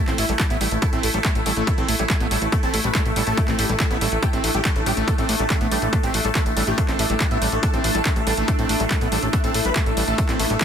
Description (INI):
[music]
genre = psychedelic trance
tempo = 141 BPM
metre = 4/4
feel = straight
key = unclear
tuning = A4 = 440 Hz
[part]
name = dense compressed supersaw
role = melody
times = 0.0-10.6 s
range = A3 to B4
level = -27 LUFS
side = equal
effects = phaser, sidechain pumping, ping-pong delay
[part]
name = pulsing gated texture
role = sustained chords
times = 0.0-10.6 s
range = A3 to E4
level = -28 LUFS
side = equal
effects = chorus, built-in reverb, sidechain pumping
[part]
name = warbly tape-like pad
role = texture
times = 0.2-10.6 s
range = A3 to A5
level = -30 LUFS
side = equal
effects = chorus, built-in reverb, sidechain pumping
[part]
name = screaming distorted acid line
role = riff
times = 0.1-10.6 s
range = G3 to C4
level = -29 LUFS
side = right 1 dB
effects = distortion, chorus, auto-pan, vintage 12-bit sampler grit, sidechain pumping, ping-pong delay
[part]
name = fat analog bass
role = bass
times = 0.1-10.6 s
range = A1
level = -25 LUFS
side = equal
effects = none
[part]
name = techno drum kit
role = drums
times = 0.1-10.6 s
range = handclaps, hi-hat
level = -26 LUFS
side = equal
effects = overdrive
[part]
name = electronic kick drum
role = drums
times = 0.4-10.6 s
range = none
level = -22 LUFS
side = equal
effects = overdrive
[part]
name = swell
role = sound effects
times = 10.3-10.6 s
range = none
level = -29 LUFS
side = equal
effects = none
[sound]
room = light reverb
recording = dense, heavily limited modern master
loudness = -18 LUFS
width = side -8 dB against mid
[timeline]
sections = 0.0-10.6 A section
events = swell 10.3-10.6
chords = 0.0 A5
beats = 0.40 | 0.82 1.25 1.67 2.10 | 2.52 2.95 3.38 3.80 | 4.23 4.65 5.08 5.50 | 5.93 6.35 6.78 7.20 | 7.63 8.05 8.48 8.91 | 9.33 9.76 10.18 10.61